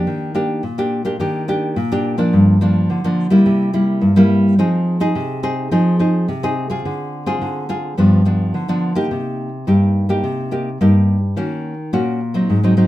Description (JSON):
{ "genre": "samba", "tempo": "106 BPM", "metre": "4/4", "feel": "straight", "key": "C minor", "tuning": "A4 = 441 Hz", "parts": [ { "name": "nylon-string guitar", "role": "solo", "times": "0.0-12.9 s", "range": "G2 to Ab4", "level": "-15 LUFS", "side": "equal", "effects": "none" } ], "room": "wet small room reverb, RT60 0.6 s", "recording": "minimal, uncompressed stereo recording", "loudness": "-15 LUFS", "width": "side -15 dB against mid", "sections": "0.0-9.1 A section; 9.1-12.9 B section", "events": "none", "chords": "0.1 Ebmaj7; 2.3 Gm7; 3.5 C7; 4.6 Fm7; 6.8 Dm7b5; 8.0 G7; 9.1 Cm7; 11.4 Ebm7" }